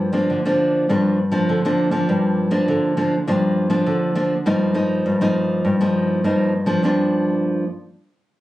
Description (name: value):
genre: samba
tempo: 101 BPM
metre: 4/4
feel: straight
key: G minor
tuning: A4 = 442 Hz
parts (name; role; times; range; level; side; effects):
- nylon-string guitar; solo; 0.0-7.6 s; G2 to Eb4; -17 LUFS; equal; none
room: light reverb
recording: recorded on a phone in the room, club reverb, compression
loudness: -17 LUFS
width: side -15 dB against mid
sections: 0.0-2.1 A section; 2.1-6.8 B section; 6.8-8.4 C section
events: none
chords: 0.0 Gm7; 4.5 Ebadd9/G; 6.8 Gm7